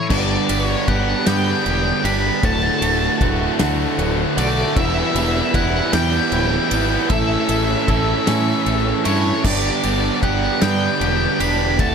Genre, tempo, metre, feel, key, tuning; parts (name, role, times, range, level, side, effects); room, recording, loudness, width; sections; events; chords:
post-rock; 51 BPM (dotted quarters); 6/8; straight; A4 = 440 Hz
octave-fuzz lead guitar; melody; 0.0-11.9 s; C#5 to B5; -23 LUFS; left 1 dB; distortion, digital delay
bright studio string section; sustained chords; 0.0-11.9 s; F#4 to D6; -34 LUFS; left 1 dB
twangy electric guitar; arpeggios; 0.0-11.9 s; D2 to A4; -26 LUFS; left 5 dB; digital delay
overdriven semi-hollow guitar; riff; 0.0-11.9 s; D2 to A4; -22 LUFS; right 12 dB; spring reverb
tight distorted guitar; riff; 0.0-11.9 s; D2 to A4; -25 LUFS; left 13 dB; distortion
growling fingered electric bass; bass; 0.1-11.9 s; D1 to A2; -22 LUFS; equal; overdrive
loose indie drum kit; drums; 0.1-11.9 s; crash cymbal, kick drum, ride cymbal, snare drum; -23 LUFS; equal
light reverb, small room ambience; -16 LUFS; side -6 dB against mid
0.1-11.9 A section
0.1 G; 2.4 D; 4.8 Em; 7.1 A; 9.4 G